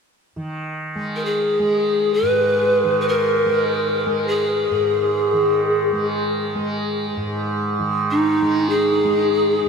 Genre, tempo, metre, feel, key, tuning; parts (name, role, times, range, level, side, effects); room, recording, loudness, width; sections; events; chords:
world meditative, free-time meditation music; free time; G# minor; A4 = 440 Hz
tanpura; drone; 0.4-9.7 s; G#2 to G#3; -24 LUFS; right 2 dB
breathy pan flute; melody; 1.2-9.7 s; D#4 to B4; -18 LUFS; equal; diffuse ambient delay
wet huge ambient reverb, RT60 8.0 s; dreamy mix soaked in reverb; -17 LUFS; side -5 dB against mid
0.4-9.7 A section